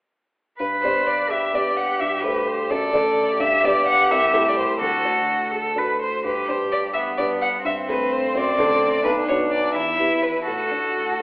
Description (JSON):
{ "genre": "quick classical-period movement for piano quartet", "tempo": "85 BPM (dotted quarters)", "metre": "6/8", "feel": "straight", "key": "G major", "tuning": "A4 = 440 Hz", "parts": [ { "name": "rich violin", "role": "melody", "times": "0.6-11.2 s", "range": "A4 to F#5", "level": "-22 LUFS", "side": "left 1 dB", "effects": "none" }, { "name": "clear cello", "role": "second line", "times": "0.6-11.2 s", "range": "B3 to C5", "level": "-23 LUFS", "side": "equal", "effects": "none" }, { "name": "dark grand piano", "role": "accompaniment", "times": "0.6-11.2 s", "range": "B1 to D5", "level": "-25 LUFS", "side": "equal", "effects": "none" } ], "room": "wet recital hall reverb, RT60 1.4 s", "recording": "telephone sound", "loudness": "-18 LUFS", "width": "side -25 dB against mid", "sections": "0.6-11.2 A section", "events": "none", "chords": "0.6 G; 2.0 Am7/G; 2.7 D/F#; 3.4 G; 4.1 Am/C; 4.8 D; 6.2 G; 7.7 Am7/G; 8.3 D/F#; 9.0 Bm; 9.7 Em; 10.5 D/A" }